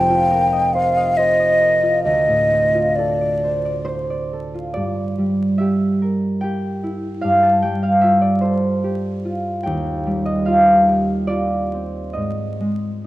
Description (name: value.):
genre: classical, impressionist duo for flute and harp.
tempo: 66-76 BPM.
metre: 3/4.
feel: rubato.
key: G minor.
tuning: A4 = 440 Hz.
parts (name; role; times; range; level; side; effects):
mellow hollow concert flute; melody; 0.0-3.9 s; D5 to G5; -16 LUFS; equal; none.
concert harp; accompaniment; 0.0-13.1 s; F1 to A5; -18 LUFS; equal; none.
room: moderate concert hall reverb, RT60 2.1 s.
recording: close, detailed microphones, vinyl crackle.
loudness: -16 LUFS.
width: side -16 dB against mid.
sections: 0.0-4.8 A section; 4.8-13.1 B section.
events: none.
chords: 0.0 F9sus4; 2.1 Dm7; 4.8 Gm6; 7.2 Fadd9/G; 9.7 Eb69; 12.1 Abmaj7.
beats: 0.31 1.17 | 2.06 2.97 3.86 | 4.75 5.59 6.41 | 7.23 8.02 8.82 | 9.66 10.46 11.29 | 12.15 13.03.